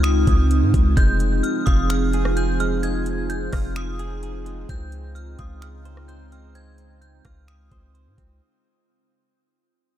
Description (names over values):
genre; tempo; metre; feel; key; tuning
hip hop, atmospheric cloud-rap; 129 BPM; 4/4; half-time; unclear; A4 = 440 Hz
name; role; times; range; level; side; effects
metallic FM bell; melody; 0.0-7.9 s; Eb6 to Ab6; -31 LUFS; equal; chorus, phaser, tape echo
dark analog pad; sustained chords; 0.0-8.4 s; Db3 to Ab4; -26 LUFS; right 1 dB; chorus, phaser, sidechain pumping
long sustained 808-style bass; bass; 0.0-8.4 s; F1 to Ab2; -23 LUFS; equal; none
smooth R&B drum kit; drums; 0.0-8.3 s; finger snaps, hi-hat, kick drum, rim click; -21 LUFS; equal; none
direct-recorded clean electric guitar; arpeggios; 1.0-8.4 s; Ab3 to C5; -36 LUFS; right 10 dB; tape echo
room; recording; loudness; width
light reverb; none; -18 LUFS; side -12 dB against mid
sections
0.0-8.4 A section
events
fade-out 0.0-8.4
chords
0.0 Dbmaj9; 1.0 Fm7; 4.7 Dbmaj9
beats
0.04 0.51 | 0.97 1.44 1.90 2.37 | 2.83 3.30 3.76 4.23 | 4.69 5.16 5.62 6.09 | 6.55 7.02 7.48 7.95